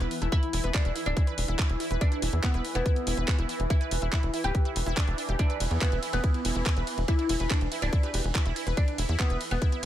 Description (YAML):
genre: psychedelic trance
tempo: 142 BPM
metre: 4/4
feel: straight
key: E minor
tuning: A4 = 440 Hz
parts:
  - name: oud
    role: melody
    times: 0.0-9.9 s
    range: B3 to G4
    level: -34 LUFS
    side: left 1 dB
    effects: phaser, sidechain pumping, dub echo
  - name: bubbling stepped-filter texture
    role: sustained chords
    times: 0.0-9.9 s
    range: E3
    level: -37 LUFS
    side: right 1 dB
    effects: chorus, built-in reverb, sidechain pumping
  - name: wide unison pluck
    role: riff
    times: 0.0-9.9 s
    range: D4 to B4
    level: -36 LUFS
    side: right 1 dB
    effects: auto-pan, sidechain pumping, ping-pong delay
  - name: tight sequencer bass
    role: bass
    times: 0.0-9.9 s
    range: D1 to E2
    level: -29 LUFS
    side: equal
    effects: tube saturation
  - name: garage drum kit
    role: drums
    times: 0.0-9.9 s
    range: handclaps, hi-hat, ride cymbal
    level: -34 LUFS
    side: equal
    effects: none
  - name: metallic wobble bass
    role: second line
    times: 0.2-0.8, 5.7-8.2 s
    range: A3 to G4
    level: -46 LUFS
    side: right 3 dB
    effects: none
  - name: electronic kick drum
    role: drums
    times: 0.3-9.7 s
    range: none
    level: -25 LUFS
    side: equal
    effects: none
room: digital ambience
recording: none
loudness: -25 LUFS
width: side -12 dB against mid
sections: 0.0-9.9 A section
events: none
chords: 0.0 E5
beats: | 0.32 0.74 1.17 1.59 | 2.01 2.43 2.86 3.28 | 3.70 4.12 4.55 4.97 | 5.39 5.82 6.24 6.66 | 7.08 7.50 7.93 8.35 | 8.77 9.20 9.62